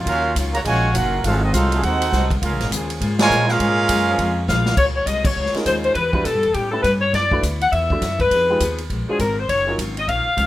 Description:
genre	jazz, big band swing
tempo	204 BPM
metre	4/4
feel	swing 61% on 8ths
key	Db major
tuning	A4 = 441 Hz
part	clear trombone section	second line	0.0-4.5 s	Bb2 to Gb4	-25 LUFS	right 2 dB	none
part	warm trombone section	sustained chords	0.0-4.2 s	Eb3 to Ab4	-31 LUFS	left 1 dB	none
part	upright bass	bass	0.0-10.5 s	Gb1 to B2	-23 LUFS	equal	none
part	clear trumpet section	melody	0.1-4.5 s	C4 to Bb5	-20 LUFS	right 2 dB	none
part	picked steel-string acoustic guitar	accompaniment	0.1-10.5 s	A2 to A4	-31 LUFS	left 4 dB	none
part	swinging big-band drum kit	drums	0.1-10.5 s	crash cymbal, hi-hat, kick drum, ride cymbal, snare drum	-26 LUFS	equal	none
part	clear saxophone section	melody	4.5-10.5 s	G4 to F#5	-19 LUFS	left 2 dB	none
part	warm baby grand piano	accompaniment	5.5-9.8 s	Gb3 to D5	-26 LUFS	right 2 dB	none
room	studio reverb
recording	rough home demo mix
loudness	-17 LUFS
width	side -15 dB against mid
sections	0.0-4.8 A section; 4.8-10.5 B section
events	band accent 3.2, 5.2; drum fill 4.5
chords	0.1 Ebm9; 1.2 Ab7b9; 2.4 Db6; 6.0 Em7; 6.5 A9; 7.1 D69; 8.3 Fm7b5; 8.9 Bb7b13; 9.5 Ebm9

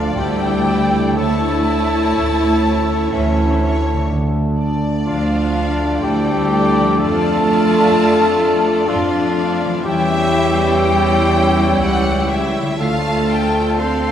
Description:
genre	classical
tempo	62 BPM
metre	3/4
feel	rubato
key	D minor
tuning	A4 = 440 Hz
part	rich studio violin section	melody	0.0-14.1 s	C#5 to G5	-26 LUFS	left 2 dB	none
part	mellow clarinet	second line	0.0-14.1 s	E4 to C5	-21 LUFS	left 2 dB	none
part	mellow hollow concert flute	second line	0.0-14.1 s	E5 to C6	-25 LUFS	left 1 dB	none
part	warm symphonic violin section	second line	0.0-14.1 s	E5 to C6	-27 LUFS	left 1 dB	none
part	rich symphonic viola section	accompaniment	0.0-14.1 s	C#4 to A4	-23 LUFS	equal	none
part	mellow French horn section	sustained chords	0.0-14.1 s	E3 to D4	-24 LUFS	left 2 dB	none
part	concert harp	arpeggios	0.0-14.1 s	D3 to D5	-29 LUFS	left 3 dB	none
part	dark trumpet section	stabs	0.0-14.1 s	A4 to C#5	-24 LUFS	right 2 dB	none
part	clear symphonic cello section	bass	0.0-14.1 s	E3 to C4	-22 LUFS	right 2 dB	none
part	rich symphonic double bass section	bass	0.0-14.1 s	C#2 to F2	-20 LUFS	right 1 dB	none
room	wet recital hall reverb, RT60 1.4 s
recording	heard from further back in the room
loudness	-14 LUFS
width	side -9 dB against mid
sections	0.0-14.1 A section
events	none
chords	0.0 Dm; 1.2 A/D; 4.1 Dm; 7.0 Dm/F; 9.8 C#dim/E; 12.8 Dm

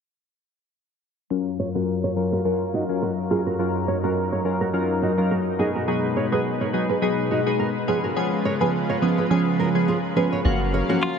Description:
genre	afrobeats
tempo	105 BPM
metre	4/4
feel	swing 55% on 16ths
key	F# major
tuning	A4 = 440 Hz
part	glassy digital keys	accompaniment	1.3-11.1 s	E#3 to A#4	-23 LUFS	equal	chorus, phaser, low-pass filter
part	lush unison pad	sustained chords	1.3-11.2 s	F#2 to E#5	-26 LUFS	left 2 dB	chorus, low-pass filter
part	nylon-string guitar	riff	1.6-11.0 s	D#4 to C#5	-27 LUFS	right 3 dB	low-pass filter, ping-pong delay
part	punchy sub bass	bass	10.4-10.8 s	F#1	-23 LUFS	equal	none
part	direct-recorded clean electric guitar	melody	11.0-11.2 s	E#4	-24 LUFS	left 1 dB	phaser
room	wet huge ambient reverb, RT60 5.1 s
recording	dreamy mix soaked in reverb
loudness	-20 LUFS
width	side -6 dB against mid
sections	1.3-10.4 A section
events	filter sweep 1.3-10.4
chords	1.3 F#maj7; 5.6 B6; 7.9 C#7; 10.4 F#maj7

